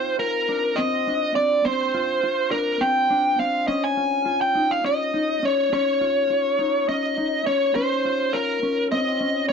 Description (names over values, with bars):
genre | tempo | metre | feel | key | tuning
progressive instrumental, progressive | 206 BPM (eighths) | 7/8 | straight | unclear | A4 = 440 Hz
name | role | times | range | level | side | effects
biting lead guitar | melody | 0.0-9.5 s | Bb4 to Ab5 | -21 LUFS | equal | overdrive
Celtic harp | arpeggios | 0.0-9.5 s | C4 to F4 | -26 LUFS | left 2 dB | none
room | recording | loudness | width
moderate studio reverb, RT60 0.6 s | dark, warm production | -20 LUFS | side -6 dB against mid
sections
0.0-9.5 A section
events
none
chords
0.0 Fsus4; 3.7 Dbsus2; 7.7 Bbm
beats
0.19 0.48 0.77 1.06 1.35 | 1.64 1.93 2.22 2.52 2.81 3.10 3.39 | 3.68 3.97 4.26 4.55 4.84 5.13 5.42 | 5.71 6.01 6.30 6.59 6.88 7.17 7.46 | 7.75 8.04 8.33 8.62 8.91 9.20 9.49